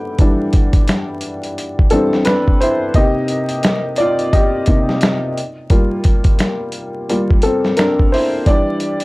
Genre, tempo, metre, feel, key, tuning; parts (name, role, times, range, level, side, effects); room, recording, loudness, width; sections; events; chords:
lo-fi hip hop; 87 BPM; 4/4; swing 62% on 16ths; A4 = 440 Hz
warm upright piano; accompaniment; 0.0-9.0 s; C3 to G5; -16 LUFS; equal; cassette tape
dusty soul sampler-style drum kit; drums; 0.2-9.0 s; finger snaps, hi-hat, kick drum, snare drum; -14 LUFS; equal
light reverb; dry, gritty hardware recording, vinyl crackle; -13 LUFS; side -22 dB against mid
0.0-9.0 A section
upright piano solo 0.0-9.0
0.0 Em7; 2.9 Cm7; 5.4 Gm7; 8.5 Em7